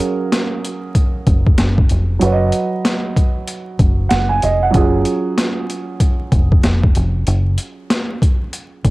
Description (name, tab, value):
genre	hip hop, boom-bap hip-hop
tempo	95 BPM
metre	4/4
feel	swing 62% on 16ths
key	unclear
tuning	A4 = 440 Hz
part	dark concert grand piano	accompaniment	0.0-8.9 s	F#3 to G#5	-20 LUFS	right 3 dB	high-pass filter, low-pass filter, cassette tape
part	boom bap sampler-style drum kit	drums	0.0-8.9 s	hi-hat, kick drum, snare drum	-15 LUFS	equal	overdrive
part	deep dub fingered electric bass	bass	1.3-8.9 s	E#1 to F#1	-16 LUFS	equal	none
room	little or no reverb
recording	home recording on cassette, vinyl crackle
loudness	-14 LUFS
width	side -20 dB against mid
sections	0.0-8.9 A section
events	break 7.3-8.9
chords	0.0 F#add9; 2.2 B/F#; 4.7 C#